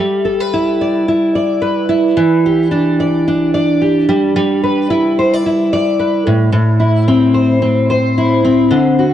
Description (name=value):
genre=indie pop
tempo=110 BPM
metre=4/4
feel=swing 55% on 16ths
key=G major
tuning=A4 = 440 Hz
part: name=fingerpicked steel-string acoustic guitar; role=solo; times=0.0-9.1 s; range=A2 to E5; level=-11 LUFS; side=equal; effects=analog chorus, vibrato effect
room=light reverb, small room ambience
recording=dark, warm production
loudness=-11 LUFS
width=side -11 dB against mid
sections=0.0-9.1 A section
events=none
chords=0.0 G6; 2.2 Em7; 4.1 G6; 6.3 Am